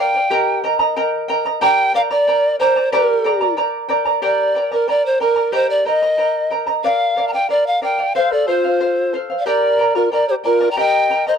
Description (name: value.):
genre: andean folk, Andean ensemble.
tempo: 92 BPM.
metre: 2/4.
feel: straight.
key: G minor.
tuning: A4 = 439 Hz.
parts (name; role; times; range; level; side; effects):
breathy bright polished pan flute; melody; 0.0-11.3 s; Bb4 to Bb5; -16 LUFS; right 1 dB; none.
charango; accompaniment; 0.0-11.4 s; G4 to Bb5; -19 LUFS; right 1 dB; none.
mellow large quena; second line; 8.2-11.3 s; F4 to G5; -20 LUFS; left 8 dB; none.
room: light reverb.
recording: dry, close 1970s-style studio recording.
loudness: -14 LUFS.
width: side -7 dB against mid.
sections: 0.0-4.2 A section; 4.2-11.4 B section.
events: none.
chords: 0.3 Eb; 1.6 Gm; 5.5 Eb; 6.8 Bb; 8.2 F; 9.5 Gm; 10.8 Eb.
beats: | 0.30 0.95 | 1.61 2.26 | 2.91 3.57 | 4.22 4.87 | 5.53 6.18 | 6.84 7.50 | 8.15 8.81 | 9.46 10.12 | 10.77.